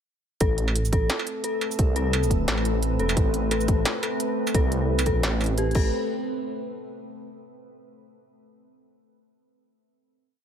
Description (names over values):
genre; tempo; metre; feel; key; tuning
half-time drum and bass; 174 BPM; 4/4; swing 57% on 16ths, half-time; A minor; A4 = 439 Hz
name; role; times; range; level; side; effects
deep dark ambient pad; sustained chords; 1.1-5.9 s; A3 to B4; -30 LUFS; equal; chorus, built-in reverb, sidechain pumping
dark detuned synth bell; arpeggios; 0.4-5.9 s; G4 to A4; -30 LUFS; left 3 dB; chorus, tremolo, vintage 12-bit sampler grit, digital delay
dark detuned saw bass; bass; 0.4-5.9 s; E1 to C2; -25 LUFS; equal; none
electronic kick drum; drums; 0.4-5.8 s; none; -23 LUFS; equal; none
industrial drum kit; drums; 0.4-5.8 s; crash cymbal, hi-hat, shaker, snare drum, struck metal; -28 LUFS; right 2 dB; none
metallic inharmonic drone; texture; 1.0-5.9 s; A3 to A4; -36 LUFS; right 2 dB; chorus, built-in reverb
room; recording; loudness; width
light reverb, digital ambience; none; -22 LUFS; side -8 dB against mid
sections
0.4-5.9 drop; 5.9-7.3 final hit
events
drop 0.4-5.9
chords
0.4 Amadd9; 5.9 N.C.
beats
| 0.41 0.75 1.10 1.44 | 1.79 2.13 2.48 2.82 | 3.17 3.51 3.86 4.20 | 4.55 4.89 5.24 5.58 | 5.93